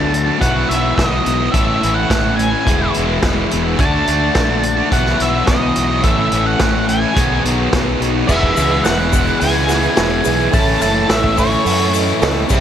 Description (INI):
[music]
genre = classic rock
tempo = 107 BPM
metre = 4/4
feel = straight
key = E major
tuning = A4 = 440 Hz
[part]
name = octave-fuzz lead guitar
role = melody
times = 0.0-11.9 s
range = C#5 to A5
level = -20 LUFS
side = right 1 dB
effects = distortion, analog delay
[part]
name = tonewheel organ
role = sustained chords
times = 0.0-12.6 s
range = B3 to F#5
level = -29 LUFS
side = equal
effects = none
[part]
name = distorted electric guitar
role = riff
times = 0.0-12.6 s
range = E2 to A4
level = -20 LUFS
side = left 11 dB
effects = distortion
[part]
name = distorted electric guitar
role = riff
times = 0.0-12.6 s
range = A2 to F#4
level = -21 LUFS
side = right 11 dB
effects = distortion
[part]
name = fuzz fingered electric bass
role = bass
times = 0.0-12.6 s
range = E1 to F#2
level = -20 LUFS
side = equal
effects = overdrive
[part]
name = vintage drum kit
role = drums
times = 0.1-12.6 s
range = crash cymbal, hi-hat, kick drum, snare drum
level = -19 LUFS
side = equal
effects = none
[part]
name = reed electric piano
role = accompaniment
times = 8.3-12.6 s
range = G4 to F#5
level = -23 LUFS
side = right 8 dB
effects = fast tremolo
[part]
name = egg shaker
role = percussion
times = 8.3-12.6 s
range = none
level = -32 LUFS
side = left 14 dB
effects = none
[sound]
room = light reverb, small room reverb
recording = none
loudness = -13 LUFS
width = side -9 dB against mid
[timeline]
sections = 0.0-8.3 A section; 8.3-12.6 B section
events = none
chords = 0.4 Bsus4; 1.5 A; 2.7 E; 3.8 D; 4.9 Bsus4; 6.0 A; 7.2 B6; 8.3 E; 10.5 A